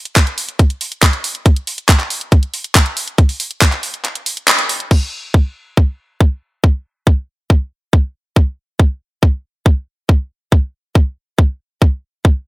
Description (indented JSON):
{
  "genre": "trance",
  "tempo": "139 BPM",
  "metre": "4/4",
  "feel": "straight",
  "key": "none",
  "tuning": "none",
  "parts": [
    { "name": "garage drum kit", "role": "drums", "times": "0.1-5.0 s", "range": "crash cymbal, handclaps, hi-hat", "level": "-16 LUFS", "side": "equal", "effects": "overdrive" },
    { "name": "electronic kick drum", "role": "drums", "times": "0.2-12.3 s", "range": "none", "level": "-10 LUFS", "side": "equal", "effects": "overdrive" }
  ],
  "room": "little or no reverb",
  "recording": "none",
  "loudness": "-14 LUFS",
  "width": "side -20 dB against mid",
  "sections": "0.0-4.9 A section; 4.9-12.5 B section",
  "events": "kick drops out 4.0-4.9; band accent 4.5",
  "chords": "none"
}